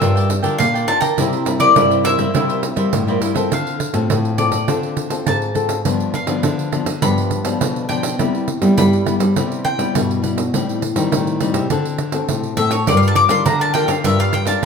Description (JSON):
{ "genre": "samba and choro", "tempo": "103 BPM", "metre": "4/4", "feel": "straight", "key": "D minor from 3.5 s", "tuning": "A4 = 440 Hz", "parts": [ { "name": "bowl-back mandolin", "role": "melody", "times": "0.0-14.6 s", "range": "C#5 to D6", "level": "-19 LUFS", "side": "left 2 dB", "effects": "none" }, { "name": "cavaquinho", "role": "accompaniment", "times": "0.0-3.5, 12.9-14.7 s", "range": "E4 to G5", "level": "-24 LUFS", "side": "right 6 dB", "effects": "none" }, { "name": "nylon-string guitar", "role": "accompaniment", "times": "0.0-14.7 s", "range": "G2 to Bb4", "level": "-21 LUFS", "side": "left 5 dB", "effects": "none" }, { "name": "nylon-string guitar", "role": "bass", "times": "0.0-14.7 s", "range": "G2 to G3", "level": "-21 LUFS", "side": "right 1 dB", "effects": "none" }, { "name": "pandeiro", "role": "percussion", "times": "0.0-14.7 s", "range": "none", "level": "-22 LUFS", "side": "right 5 dB", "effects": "none" } ], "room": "moderate large studio reverb, RT60 1.3 s", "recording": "minimal, uncompressed stereo recording", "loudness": "-15 LUFS", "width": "side -6 dB against mid", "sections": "0.0-3.5 A section; 3.5-14.7 B section", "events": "mandolin solo 3.5-14.7", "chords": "0.0 Gm7; 1.2 C7; 3.5 Dm7; 5.9 G7; 8.2 Cmaj7; 10.5 Am7b5; 11.7 D7; 12.9 Gm7", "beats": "0.01 0.59 | 1.18 1.76 2.35 2.93 | 3.52 4.10 4.68 5.27 | 5.86 6.44 7.03 7.61 | 8.20 8.78 9.37 9.95 | 10.54 11.12 11.70 12.29 | 12.87 13.46 14.04 14.63" }